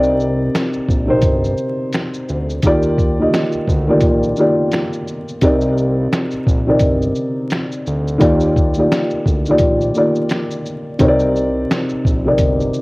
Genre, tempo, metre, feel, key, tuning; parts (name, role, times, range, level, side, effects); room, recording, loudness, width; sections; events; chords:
lo-fi hip hop; 86 BPM; 4/4; swing 58% on 16ths; C minor; A4 = 440 Hz
felt-muted upright piano; accompaniment; 0.0-12.8 s; C3 to Eb5; -16 LUFS; equal; cassette tape, low-pass filter
fat analog bass; bass; 0.0-12.7 s; G1 to Eb2; -21 LUFS; equal
lo-fi sampler-style drum kit; drums; 0.0-12.8 s; finger snaps, hi-hat, kick drum, shaker, snare drum; -18 LUFS; equal; cassette tape
deep dark ambient pad; sustained chords; 12.0-12.8 s; C3 to Eb4; -35 LUFS; right 2 dB
light reverb; home recording on cassette, vinyl crackle; -14 LUFS; side -24 dB against mid
0.0-12.8 A section
0.0 Cm9; 2.6 Ebmaj7; 5.4 Cm9; 8.2 Ebmaj7; 11.0 Cm9